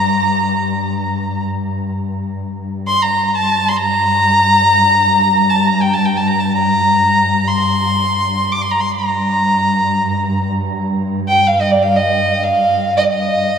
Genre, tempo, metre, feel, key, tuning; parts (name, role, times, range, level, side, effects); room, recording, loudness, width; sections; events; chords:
Turkish makam ensemble; free time; G makam nihavent; A4 = 439 Hz
dark violin; melody; 0.0-13.6 s; D5 to D6; -14 LUFS; equal
dark studio cello section; drone; 0.0-13.6 s; G2; -19 LUFS; left 1 dB
wet cathedral reverb, RT60 5.3 s; in a vast, echoing space; -13 LUFS; side -7 dB against mid
0.0-13.6 A section